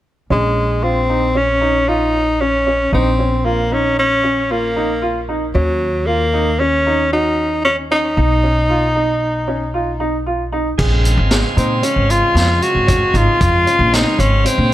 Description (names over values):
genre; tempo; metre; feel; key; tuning
progressive instrumental, band music in an uneven meter; 115 BPM; 5/4; straight; Bb minor; A4 = 436 Hz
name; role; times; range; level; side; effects
warm tenor saxophone; melody; 0.3-14.7 s; Gb3 to Gb4; -16 LUFS; equal; plate reverb, tape echo
warm baby grand piano; arpeggios; 0.3-14.7 s; C4 to Ab4; -22 LUFS; right 1 dB; plate reverb
upright bass; bass; 0.3-14.7 s; Ab1 to Bb2; -18 LUFS; equal; none
bright tonewheel organ; accompaniment; 10.8-14.7 s; Db3 to F5; -22 LUFS; right 2 dB; overdrive, stopped rotary speaker, plate reverb
street-band drum kit; drums; 10.8-14.6 s; crash cymbal, hi-hat, kick drum, snare drum; -19 LUFS; equal; none
room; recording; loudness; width
light reverb; none; -13 LUFS; side -14 dB against mid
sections
0.3-10.8 A section; 10.8-14.7 B section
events
none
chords
0.3 Bbm; 5.5 Ebm7; 8.2 B; 10.8 Bbm7